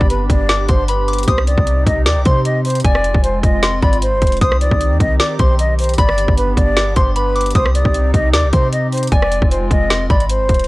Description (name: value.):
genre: hip hop, trap.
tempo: 153 BPM.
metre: 4/4.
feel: half-time.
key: C harmonic minor.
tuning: A4 = 439 Hz.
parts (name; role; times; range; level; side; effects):
breathy mellow concert flute; melody; 0.0-10.7 s; B4 to Eb5; -19 LUFS; equal; analog delay.
soft synth bell; second line; 0.0-10.3 s; Ab5 to Eb6; -24 LUFS; left 1 dB; chorus, analog delay.
hollow soft pad; sustained chords; 0.0-10.7 s; C3 to G4; -24 LUFS; equal; chorus.
clean 808-style bass; bass; 0.0-10.7 s; Eb1 to C3; -17 LUFS; equal; none.
trap drum kit; drums; 0.0-10.7 s; hi-hat, kick drum, rim click, snare drum; -16 LUFS; equal; none.
room: little or no reverb.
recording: dry, gritty hardware recording, cassette tape.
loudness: -12 LUFS.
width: side -20 dB against mid.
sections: 0.0-10.7 A section.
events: none.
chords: 0.0 G; 1.3 Cm; 2.8 Fm; 4.4 Cm; 6.0 G; 7.6 Cm; 9.1 Fm.